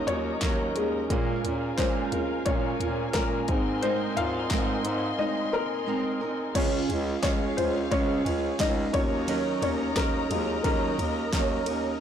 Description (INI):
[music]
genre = piano-driven pop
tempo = 88 BPM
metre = 4/4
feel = swing 56% on 16ths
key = unclear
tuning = A4 = 439 Hz
[part]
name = dark upright piano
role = accompaniment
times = 0.0-12.0 s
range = Gb3 to F5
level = -30 LUFS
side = left 4 dB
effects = none
[part]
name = dark studio string section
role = sustained chords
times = 0.0-12.0 s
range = Db4 to C6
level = -35 LUFS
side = left 3 dB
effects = none
[part]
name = fingerpicked steel-string acoustic guitar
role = riff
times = 0.0-12.0 s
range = Bb2 to Bb4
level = -30 LUFS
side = right 6 dB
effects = none
[part]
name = warm bass clarinet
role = bass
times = 0.1-11.9 s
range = Db2 to Bb2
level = -33 LUFS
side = equal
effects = none
[part]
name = pop drum kit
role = drums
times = 0.1-11.8 s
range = crash cymbal, handclaps, hi-hat, kick drum, ride cymbal, snare drum, toms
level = -30 LUFS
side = equal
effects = none
[sound]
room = moderate studio reverb, RT60 0.8 s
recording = blown-out, overdriven recording, overdrive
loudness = -24 LUFS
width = side -9 dB against mid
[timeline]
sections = 0.0-6.6 A section; 6.6-12.0 B section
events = upright piano solo 0.0-6.6, 6.6-12.0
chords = 0.0 Ebm7; 1.1 Bbm7; 3.5 Abadd9; 6.6 Db; 8.9 Ebm7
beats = 0.42 | 1.10 1.78 2.46 3.15 | 3.83 4.51 5.19 5.87 | 6.56 7.24 7.92 8.60 | 9.28 9.96 10.64 11.32